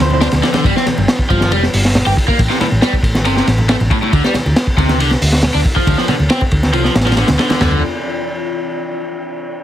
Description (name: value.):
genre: breakbeat, breaks.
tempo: 138 BPM.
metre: 4/4.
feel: straight.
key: D minor.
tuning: A4 = 440 Hz.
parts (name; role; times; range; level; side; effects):
deep dark ambient pad; sustained chords; 0.0-7.8 s; F3 to D5; -26 LUFS; left 2 dB; chorus, built-in reverb, vintage 12-bit sampler grit, sidechain pumping.
hollow-body short-scale fingered electric bass; bass; 0.0-7.8 s; F1 to D2; -15 LUFS; equal; none.
crunchy breakbeat drum kit; drums; 0.0-7.7 s; china cymbal, hi-hat, kick drum, ride cymbal, snare drum, toms; -15 LUFS; equal; none.
congas and bongos; percussion; 0.1-7.6 s; none; -25 LUFS; right 1 dB; none.
overdriven electric guitar; riff; 0.2-7.8 s; A2 to G4; -18 LUFS; equal; vintage 12-bit sampler grit, low-pass filter, ping-pong delay.
room: light reverb.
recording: heavily compressed radio sound.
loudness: -12 LUFS.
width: side -12 dB against mid.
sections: 0.0-7.6 A section; 7.6-9.3 B section.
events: none.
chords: 0.0 Dm9; 0.7 Gm7; 2.4 Am7; 4.1 Dm9.